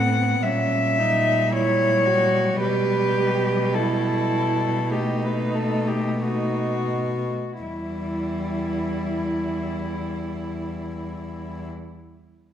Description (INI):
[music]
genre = classical, lyrical piece for cello ensemble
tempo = 41-58 BPM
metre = 4/4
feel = rubato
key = E minor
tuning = A4 = 440 Hz
[part]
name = warm cello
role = melody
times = 0.0-11.6 s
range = E4 to F#5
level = -25 LUFS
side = left 3 dB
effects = none
[part]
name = dark cello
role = second line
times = 0.0-11.7 s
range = B3 to G4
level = -28 LUFS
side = right 6 dB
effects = none
[part]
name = warm cello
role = accompaniment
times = 0.0-11.7 s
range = G3 to C4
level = -29 LUFS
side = left 3 dB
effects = none
[part]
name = warm cello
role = bass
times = 0.0-11.7 s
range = E2 to B2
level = -27 LUFS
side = right 1 dB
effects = none
[sound]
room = wet recital hall reverb, RT60 1.6 s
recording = none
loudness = -21 LUFS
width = side -9 dB against mid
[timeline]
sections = 0.0-7.6 A section; 7.6-12.5 B section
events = slowing down 0.0-7.6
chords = 0.4 A#dim7; 2.6 Em/B; 4.9 B7; 7.6 Em